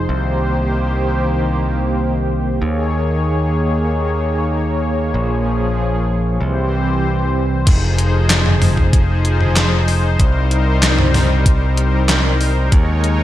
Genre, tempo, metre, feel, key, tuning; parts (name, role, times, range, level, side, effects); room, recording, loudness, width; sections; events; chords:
synthwave; 95 BPM; 4/4; straight; F minor; A4 = 440 Hz
warm analog pad; sustained chords; 0.0-13.2 s; Eb3 to Db5; -19 LUFS; left 1 dB; chorus, tremolo, sidechain pumping
modern bright picked electric bass; bass; 0.0-13.2 s; F1 to Eb2; -17 LUFS; equal; low-pass filter
electronic kick drum; drums; 7.7-12.8 s; -14 LUFS; equal; overdrive
gated 80s digital drum machine; drums; 7.7-13.2 s; crash cymbal, handclaps, hi-hat, snare drum, toms; -18 LUFS; equal; gated reverb, gated reverb snare, overdrive
light reverb; -14 LUFS; side -13 dB against mid
0.0-7.7 A section; 7.7-13.2 B section
0.1 Cm7; 2.6 Eb7sus4; 5.1 Bbm7; 6.4 C; 7.7 Fm7; 10.2 Cm7; 12.7 Eb7sus4